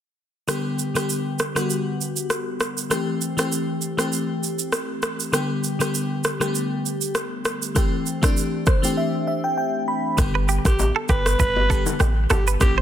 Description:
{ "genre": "afrobeats", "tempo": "99 BPM", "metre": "4/4", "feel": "swing 55% on 16ths", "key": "G major", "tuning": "A4 = 440 Hz", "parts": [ { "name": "crystalline FM electric piano", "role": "accompaniment", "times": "0.5-12.8 s", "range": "D3 to B5", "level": "-24 LUFS", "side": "left 2 dB", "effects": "chorus" }, { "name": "afro-pop drum kit", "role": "drums", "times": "0.5-12.8 s", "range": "kick drum, rim click, shaker", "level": "-23 LUFS", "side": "right 1 dB", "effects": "none" }, { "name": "clean 808-style bass", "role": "bass", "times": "10.2-12.8 s", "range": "G1 to A1", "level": "-21 LUFS", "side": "equal", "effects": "none" }, { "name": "congas and bongos", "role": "percussion", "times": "10.2-12.8 s", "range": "none", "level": "-30 LUFS", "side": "left 7 dB", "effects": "none" }, { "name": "direct-recorded clean electric guitar", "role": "riff", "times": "10.4-12.8 s", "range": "G4 to C5", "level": "-27 LUFS", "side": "right 7 dB", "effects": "ping-pong delay" }, { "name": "raspy alto saxophone", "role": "melody", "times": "10.7-12.8 s", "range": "G4 to B4", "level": "-25 LUFS", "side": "right 1 dB", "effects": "ping-pong delay" } ], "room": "light reverb", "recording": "dense, heavily limited modern master", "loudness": "-20 LUFS", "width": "side -10 dB against mid", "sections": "0.5-10.2 A section; 10.2-12.8 B section", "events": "FM electric piano fill 8.4-10.2; break 9.0-10.2", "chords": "0.5 G; 2.9 Am7; 5.3 G; 7.8 Am7; 10.2 G" }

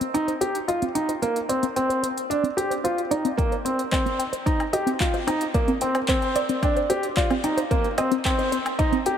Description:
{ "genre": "piano and strings electronica", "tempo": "111 BPM", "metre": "4/4", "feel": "straight", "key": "C minor", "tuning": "A4 = 440 Hz", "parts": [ { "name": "warbly dusty pluck", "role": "arpeggios", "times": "0.0-9.1 s", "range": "C4 to G5", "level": "-28 LUFS", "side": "equal", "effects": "chorus, sidechain pumping, digital delay" }, { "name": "deep house drum kit", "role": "drums", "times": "0.0-9.2 s", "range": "handclaps, hi-hat, woodblock", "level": "-31 LUFS", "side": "left 1 dB", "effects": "small room ambience" }, { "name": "warm upright piano", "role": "riff", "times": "0.1-9.2 s", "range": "Bb3 to G4", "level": "-24 LUFS", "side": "equal", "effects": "digital delay" }, { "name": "electronic kick drum", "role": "drums", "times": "3.4-8.9 s", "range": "none", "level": "-25 LUFS", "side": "left 1 dB", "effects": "small room ambience" } ], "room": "moderate huge ambient reverb, RT60 3.9 s", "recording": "none", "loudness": "-21 LUFS", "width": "side -8 dB against mid", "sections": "0.0-9.2 A section", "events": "build-up 0.0-9.2; filter sweep on synth arpeggio sound 0.0-9.2", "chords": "0.0 Eb69; 1.2 G5; 3.4 Cm; 5.5 N.C.; 7.7 Bbsus4 (rootless)" }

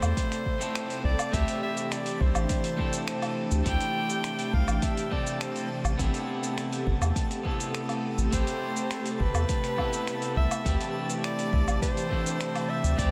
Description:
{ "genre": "sunset chillout", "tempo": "103 BPM", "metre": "4/4", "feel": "straight", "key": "A minor", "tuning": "A4 = 440 Hz", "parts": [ { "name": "clear soprano saxophone", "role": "melody", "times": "0.0-13.1 s", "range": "B4 to G5", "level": "-36 LUFS", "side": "equal", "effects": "tape echo" }, { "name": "electric guitar at the edge of break-up", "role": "accompaniment", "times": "0.0-13.1 s", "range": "A3 to A4", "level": "-36 LUFS", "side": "equal", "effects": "tape echo" }, { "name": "airy breathy pad", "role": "sustained chords", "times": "0.0-13.1 s", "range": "C3 to A4", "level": "-37 LUFS", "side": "equal", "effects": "chorus, phaser" }, { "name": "round analog bass", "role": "bass", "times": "0.0-13.1 s", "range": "G1 to E2", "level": "-29 LUFS", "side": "equal", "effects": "none" }, { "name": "dusty soul sampler-style drum kit", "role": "drums", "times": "0.0-13.1 s", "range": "finger snaps, hi-hat, shaker, woodblock", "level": "-38 LUFS", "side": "equal", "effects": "none" }, { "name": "electronic kick drum", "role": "drums", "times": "0.2-13.1 s", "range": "none", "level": "-33 LUFS", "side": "equal", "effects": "none" }, { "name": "twinkling granular texture", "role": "texture", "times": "2.2-13.1 s", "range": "A5", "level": "-46 LUFS", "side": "equal", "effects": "built-in reverb" } ], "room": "wet huge ambient reverb, RT60 7.7 s", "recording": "dreamy mix soaked in reverb", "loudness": "-28 LUFS", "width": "mono", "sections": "0.0-13.1 A section", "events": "none", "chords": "0.0 Am7; 1.3 D9sus4; 5.7 Am9; 10.7 D9sus4" }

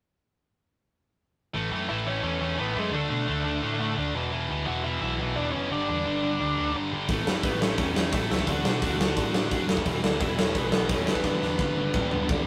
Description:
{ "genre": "punk rock", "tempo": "173 BPM", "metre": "4/4", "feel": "straight", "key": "unclear", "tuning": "A4 = 440 Hz", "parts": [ { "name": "distorted electric guitar", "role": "riff", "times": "1.5-12.5 s", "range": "E2 to D4", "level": "-33 LUFS", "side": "equal", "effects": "overdrive" }, { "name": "tight distorted guitar", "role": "riff", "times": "1.5-12.5 s", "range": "E2 to D4", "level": "-37 LUFS", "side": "equal", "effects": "distortion" }, { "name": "overdriven picked electric bass", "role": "bass", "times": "1.5-12.4 s", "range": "E1 to B2", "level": "-36 LUFS", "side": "equal", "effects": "none" }, { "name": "bluesy overdriven lead guitar", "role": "melody", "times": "1.9-12.3 s", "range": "G#3 to F#5", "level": "-34 LUFS", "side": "equal", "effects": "distortion" }, { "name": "big rock drum kit", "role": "drums", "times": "7.1-12.4 s", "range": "hi-hat, kick drum, snare drum, toms", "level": "-28 LUFS", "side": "equal", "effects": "none" } ], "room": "light reverb", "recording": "rough rehearsal-room recording, tube saturation", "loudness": "-27 LUFS", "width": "mono", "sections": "1.5-12.5 A section", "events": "drum fill 11.2-12.5", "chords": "1.5 A; 2.9 D5; 4.1 E5; 5.7 G5; 7.1 A; 8.5 D; 9.7 E5; 11.2 G" }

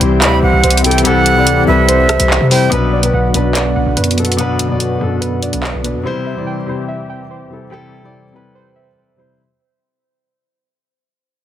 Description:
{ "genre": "hip hop, drill", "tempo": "144 BPM", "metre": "4/4", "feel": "half-time", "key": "unclear", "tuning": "A4 = 435 Hz", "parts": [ { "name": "dark grand piano", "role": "accompaniment", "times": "0.0-9.4 s", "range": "B2 to D5", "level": "-17 LUFS", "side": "left 3 dB", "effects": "none" }, { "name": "warm analog pad", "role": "sustained chords", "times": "0.0-9.4 s", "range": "D3 to G4", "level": "-22 LUFS", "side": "equal", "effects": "chorus" }, { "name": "muted felt-like synth keys", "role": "arpeggios", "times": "0.0-9.4 s", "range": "G4 to G5", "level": "-20 LUFS", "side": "equal", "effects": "chorus, tape echo" }, { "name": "hard-hitting 808-style bass", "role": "bass", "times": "0.0-6.0 s", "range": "B1 to C3", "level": "-17 LUFS", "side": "equal", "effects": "none" }, { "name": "drill drum kit", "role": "drums", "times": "0.0-5.9 s", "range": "handclaps, hi-hat, rim click", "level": "-17 LUFS", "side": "equal", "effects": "none" }, { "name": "reedy concert flute", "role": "second line", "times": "0.2-2.7 s", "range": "E5 to B5", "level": "-16 LUFS", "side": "right 4 dB", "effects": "tape echo" } ], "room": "little or no reverb", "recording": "dense, heavily limited modern master", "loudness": "-11 LUFS", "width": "side -11 dB against mid", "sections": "0.0-2.7 A section; 2.7-9.4 B section", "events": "fade-out 2.7-9.4", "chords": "0.0 C; 2.7 Bm; 6.1 C" }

